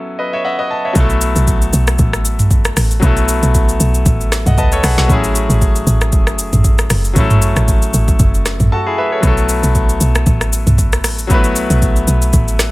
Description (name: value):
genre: amapiano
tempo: 116 BPM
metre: 4/4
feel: swing 55% on 16ths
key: unclear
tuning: A4 = 440 Hz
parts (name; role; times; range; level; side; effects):
- bright concert grand piano; accompaniment; 0.0-12.7 s; F#3 to A5; -18 LUFS; left 2 dB; none
- woody log drum bass; bass; 1.0-12.7 s; F#1 to C#2; -15 LUFS; equal; none
- afro-pop drum kit; drums; 1.0-12.7 s; hi-hat, kick drum, rim click, shaker, snare drum, toms; -14 LUFS; equal; none
room: digital ambience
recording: none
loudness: -11 LUFS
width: side -20 dB against mid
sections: 1.0-12.7 A section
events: break 0.0-1.0, 8.7-9.2; grand piano fill 0.2-1.0, 4.3-5.1, 8.5-9.2; drop 1.0-12.7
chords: 0.0 A69; 1.0 B7sus4; 5.1 F#m9; 9.2 B7sus4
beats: 0.44 | 0.96 1.47 1.99 2.51 | 3.03 3.54 4.06 4.58 | 5.09 5.61 6.13 6.65 | 7.16 7.68 8.20 8.72 | 9.23 9.75 10.27 10.79 | 11.30 11.82 12.34